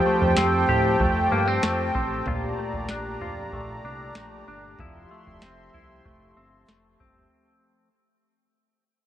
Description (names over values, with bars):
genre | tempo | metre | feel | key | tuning
dream pop | 95 BPM | 4/4 | straight | F major | A4 = 440 Hz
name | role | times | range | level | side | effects
warm analog pad | sustained chords | 0.0-7.3 s | G4 to C6 | -26 LUFS | right 1 dB | chorus
semi-hollow electric guitar | arpeggios | 0.0-7.9 s | Bb2 to G4 | -28 LUFS | left 2 dB | wide subtle chorus, tape echo
fat analog bass | bass | 0.2-7.3 s | F1 to A2 | -29 LUFS | equal | none
soft vintage rhythm box | drums | 0.2-7.3 s | kick drum, snare drum, toms | -30 LUFS | right 1 dB | none
room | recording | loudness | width
moderate huge ambient reverb, RT60 4.1 s | none | -21 LUFS | side -11 dB against mid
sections
0.0-7.3 A section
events
fade-out 0.0-7.3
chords
0.0 Fadd9; 2.3 Bbmaj7; 4.8 Fmaj7